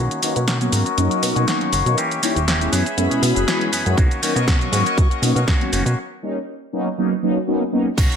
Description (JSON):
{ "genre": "filtered disco house", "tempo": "120 BPM", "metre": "4/4", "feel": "swing 54% on 16ths", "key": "B major", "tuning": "A4 = 440 Hz", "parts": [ { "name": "rich chamber string section", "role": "sustained chords", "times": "0.0-8.2 s", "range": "G4 to C#6", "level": "-25 LUFS", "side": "left 6 dB", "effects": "sidechain pumping, low-pass filter" }, { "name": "electric guitar with an envelope filter", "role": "riff", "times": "0.0-8.2 s", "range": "D#3 to G#4", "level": "-26 LUFS", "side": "equal", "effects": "sidechain pumping, low-pass filter" }, { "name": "plucky analog bass", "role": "bass", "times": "0.0-8.1 s", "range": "D#1 to B2", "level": "-21 LUFS", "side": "equal", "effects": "sidechain pumping, low-pass filter" }, { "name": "house drum kit", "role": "drums", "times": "0.1-8.2 s", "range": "cabasa, crash cymbal, hi-hat, snare drum", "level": "-24 LUFS", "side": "right 1 dB", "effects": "sidechain pumping on perc, sidechain pumping on hats, sidechain pumping on cymbals" }, { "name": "mellow synth brass", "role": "accompaniment", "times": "0.2-7.9 s", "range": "F#3 to G#4", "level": "-22 LUFS", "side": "equal", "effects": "chorus, phaser, sidechain pumping, low-pass filter" }, { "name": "electronic kick drum", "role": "drums", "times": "4.0-8.1 s", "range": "none", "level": "-17 LUFS", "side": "equal", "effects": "none" }, { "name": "tambourine", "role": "percussion", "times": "8.0-8.1 s", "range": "none", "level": "-32 LUFS", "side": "left 1 dB", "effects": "sidechain pumping on perc, low-pass filter on perc" } ], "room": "light reverb, digital ambience", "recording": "none", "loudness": "-17 LUFS", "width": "side -7 dB against mid", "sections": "0.0-8.0 A section", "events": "build-up 0.0-8.0; filter sweep 0.0-8.0; break 6.0-8.0", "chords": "0.0 Bmaj9; 2.0 D#7b9; 2.7 F#9sus4; 4.0 Bmaj9; 6.0 D#7; 6.7 F#sus4" }